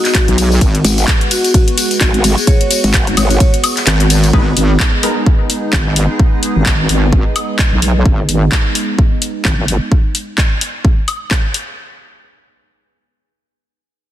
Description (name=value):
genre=bass house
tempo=129 BPM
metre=4/4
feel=swing 58% on 16ths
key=G# minor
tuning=A4 = 438 Hz
part: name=vibraphone with medium hard mallets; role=melody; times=0.0-3.5 s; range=F#4 to C#5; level=-20 LUFS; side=equal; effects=ping-pong delay
part: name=sweeping resonant pad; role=sustained chords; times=0.0-9.9 s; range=G#3 to F#4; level=-22 LUFS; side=equal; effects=chorus, sidechain pumping
part: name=house drum kit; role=drums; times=0.0-11.7 s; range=handclaps, hi-hat, ride cymbal, tambourine, woodblock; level=-17 LUFS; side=left 1 dB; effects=none
part: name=electronic kick drum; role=drums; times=0.1-11.4 s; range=none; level=-13 LUFS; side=equal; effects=none
part: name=wobble bass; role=bass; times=0.3-0.8, 3.9-9.8 s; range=G#1 to B1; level=-13 LUFS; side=equal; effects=chorus, tube saturation, sidechain pumping
part: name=growl bass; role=bass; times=0.8-3.4 s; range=G#1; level=-13 LUFS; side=equal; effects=chorus, sidechain pumping
part: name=orchestra-hit-like synth stab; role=stabs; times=4.3-5.2 s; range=G#3 to B4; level=-21 LUFS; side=left 1 dB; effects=built-in reverb, sidechain pumping, ping-pong delay
part: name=granular cloud pad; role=texture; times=5.2-8.1 s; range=D#4 to G#5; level=-30 LUFS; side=equal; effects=none
room=light reverb, digital ambience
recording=dense, heavily limited modern master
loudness=-11 LUFS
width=side -12 dB against mid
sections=0.0-4.3 A section; 4.3-11.8 B section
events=drop 0.0-4.3; kick drops out 3.9-4.3; fade-out on ambient pad 4.3-8.1; filter sweep on wobble bass 4.3-9.9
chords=0.0 G#m